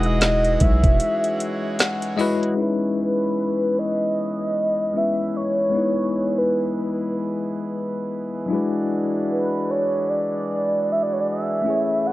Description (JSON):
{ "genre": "contemporary R&B", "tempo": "76 BPM", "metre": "4/4", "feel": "swing 58% on 16ths", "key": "E major", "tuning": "A4 = 440 Hz", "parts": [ { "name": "mellow horn-like synth lead", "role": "melody", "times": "0.0-12.1 s", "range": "B4 to F#5", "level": "-23 LUFS", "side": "right 1 dB", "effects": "chorus" }, { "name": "bell-like tine electric piano", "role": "accompaniment", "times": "0.0-12.1 s", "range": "F#3 to F#5", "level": "-24 LUFS", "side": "left 3 dB", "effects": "fast stereo tremolo" }, { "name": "pedal harmonium", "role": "sustained chords", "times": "0.0-12.1 s", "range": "E3 to D#5", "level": "-29 LUFS", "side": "right 2 dB", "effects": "none" }, { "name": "long sustained 808-style bass", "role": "bass", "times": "0.0-1.0 s", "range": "E1 to B1", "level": "-21 LUFS", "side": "equal", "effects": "none" }, { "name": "smooth R&B drum kit", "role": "drums", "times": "0.0-2.6 s", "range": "hi-hat, kick drum, snare drum", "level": "-19 LUFS", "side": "equal", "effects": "none" } ], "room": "little or no reverb", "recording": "worn, warbling old tape, cassette tape, warbly pitch drift, low-pass filter", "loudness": "-20 LUFS", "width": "side -16 dB against mid", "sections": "0.0-2.6 A section; 2.6-12.1 B section", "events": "break 1.0-2.6; tine electric piano fill 1.4-2.6; filter sweep 2.6-12.1", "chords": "0.0 Emaj9; 2.6 C#m9; 5.7 Emaj7; 8.5 E9" }